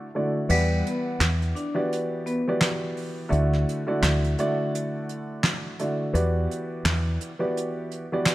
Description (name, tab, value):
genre	hip hop, boom-bap hip-hop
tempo	85 BPM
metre	4/4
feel	swing 57% on 16ths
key	E minor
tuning	A4 = 439 Hz
part	dark baby grand piano	accompaniment	0.0-8.3 s	D3 to F#5	-27 LUFS	equal	cassette tape, high-pass filter, low-pass filter
part	vibraphone with medium hard mallets	melody	0.5-2.4 s	G3 to D5	-30 LUFS	left 2 dB	high-pass filter, low-pass filter, tape echo
part	deep dub fingered electric bass	bass	0.5-7.2 s	D2 to E2	-23 LUFS	equal	none
part	soft brush drum kit	drums	0.5-8.3 s	crash cymbal, handclaps, hi-hat, snare drum	-26 LUFS	right 1 dB	vintage 12-bit sampler grit
room	light reverb, studio reverb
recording	none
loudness	-23 LUFS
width	side -16 dB against mid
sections	0.5-8.3 A section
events	break 0.0-0.5; kick muted 0.5-8.3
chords	0.5 Em7; 3.3 Dadd9; 6.1 Em7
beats	| 0.49 1.20 1.91 2.61 | 3.32 4.02 4.73 5.44 | 6.14 6.85 7.55 8.26